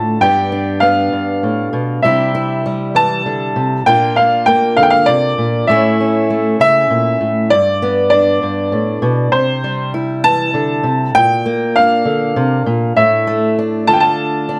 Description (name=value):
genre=folk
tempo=66 BPM (dotted quarters)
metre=6/8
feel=straight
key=unclear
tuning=A4 = 440 Hz
part: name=bright upright piano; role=melody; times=0.0-14.6 s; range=C5 to A5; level=-16 LUFS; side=equal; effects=none
part: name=fingerpicked steel-string acoustic guitar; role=accompaniment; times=0.0-14.6 s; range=G2 to G4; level=-18 LUFS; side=equal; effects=none
room=light reverb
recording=none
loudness=-14 LUFS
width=mono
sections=0.0-7.5 A section; 7.5-14.6 A section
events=none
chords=0.2 G; 2.0 C; 3.9 Bb; 5.7 A; 7.5 G; 9.3 C; 11.2 Bb; 13.0 Dm/A